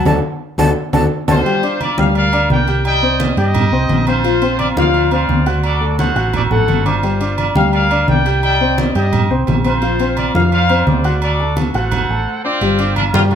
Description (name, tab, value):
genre	latin, salsa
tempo	172 BPM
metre	4/4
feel	straight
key	G minor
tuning	A4 = 440 Hz
part	breathy mellow silver concert flute	melody	0.0-1.4 s	A5	-21 LUFS	equal	none
part	dark concert grand piano	accompaniment	0.0-13.3 s	F3 to G6	-18 LUFS	left 3 dB	none
part	hollow-body short-scale fingered electric bass	bass	0.0-13.3 s	G1 to G2	-18 LUFS	right 1 dB	none
part	congas	percussion	0.1-13.3 s	none	-20 LUFS	equal	none
part	timbales and agogo bells	percussion	0.1-13.3 s	none	-23 LUFS	right 6 dB	none
part	clear trumpet section	melody	1.3-13.3 s	C4 to G5	-19 LUFS	equal	none
room	moderate studio reverb, RT60 0.9 s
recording	none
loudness	-13 LUFS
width	side -8 dB against mid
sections	0.0-1.5 A section; 1.5-12.6 B section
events	flute solo 0.0-1.5; band accent 0.1-1.5; drum fill 0.8-1.5; break 12.3-12.6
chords	0.1 D; 1.5 Gm7; 2.9 Cmadd9; 4.2 Bbadd9; 5.6 D7; 7.0 Gm7; 8.4 Cmadd9; 9.8 Bbadd9; 11.2 D7; 12.6 G7(no3)